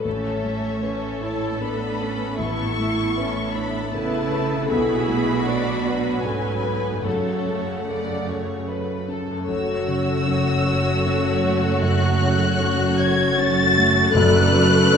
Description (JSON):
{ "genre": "cinematic, emotional film score for orchestra", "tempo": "77 BPM", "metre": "3/4", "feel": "rubato", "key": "F# minor", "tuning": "A4 = 440 Hz", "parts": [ { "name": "warm studio violin section", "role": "second line", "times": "0.0-15.0 s", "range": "E4 to D5", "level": "-28 LUFS", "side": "left 2 dB", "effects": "none" }, { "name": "dark grand piano", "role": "accompaniment", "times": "0.0-15.0 s", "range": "A1 to D5", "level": "-25 LUFS", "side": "left 2 dB", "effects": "none" }, { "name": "rich studio viola section", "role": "accompaniment", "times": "0.0-15.0 s", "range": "C#3 to A4", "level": "-26 LUFS", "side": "right 1 dB", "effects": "none" }, { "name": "concert harp", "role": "arpeggios", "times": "0.0-15.0 s", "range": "F#2 to C#6", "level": "-29 LUFS", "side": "left 5 dB", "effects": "none" }, { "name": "warm studio violin section", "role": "melody", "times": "0.1-15.0 s", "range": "E5 to A6", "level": "-26 LUFS", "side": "left 2 dB", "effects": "none" }, { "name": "rich studio cello section", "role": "bass", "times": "0.1-15.0 s", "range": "F#2 to C#3", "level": "-28 LUFS", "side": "right 5 dB", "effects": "none" }, { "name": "warm studio double bass section", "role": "bass", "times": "9.5-15.0 s", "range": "F#1", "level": "-24 LUFS", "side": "right 4 dB", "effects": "none" }, { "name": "timpani", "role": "percussion", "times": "14.1-15.0 s", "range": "F#2", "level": "-24 LUFS", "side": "equal", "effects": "none" } ], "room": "wet recital hall reverb, RT60 1.4 s", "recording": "recorded in a church or concert hall, nothing above 10.3 kHz", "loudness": "-19 LUFS", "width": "side -7 dB against mid", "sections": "0.0-9.5 A section; 9.5-15.0 A section", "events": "none", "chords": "0.1 Aadd9; 4.7 Bm7; 7.1 F#m; 9.5 F#m7; 14.2 D6/F#", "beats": "| 0.06 0.84 1.62 | 2.39 3.17 3.93 | 4.70 5.47 6.25 | 7.06 7.88 8.69 | 9.49 10.28 11.06 | 11.83 12.61 13.38 | 14.15 14.92" }